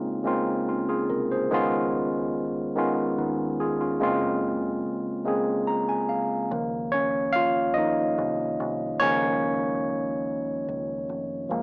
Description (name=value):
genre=slow six-eight R&B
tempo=48 BPM (dotted quarters)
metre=6/8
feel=straight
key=unclear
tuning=A4 = 440 Hz
part: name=barky tine electric piano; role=accompaniment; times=0.0-11.6 s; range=Db3 to Bb5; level=-23 LUFS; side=equal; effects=fast stereo tremolo, cassette tape
part: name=deep dub fingered electric bass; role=bass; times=1.1-11.6 s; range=F1 to Eb2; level=-39 LUFS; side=equal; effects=none
room=moderate studio reverb, RT60 0.6 s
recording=home recording on cassette, small speaker sound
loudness=-23 LUFS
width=side -39 dB against mid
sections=0.0-6.5 A section; 6.5-11.6 B section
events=tine electric piano fill 5.3-6.5; tine electric piano solo 6.5-11.6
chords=0.0 Bbm9; 1.5 Db9; 4.0 Gbmaj9#11; 6.5 Db69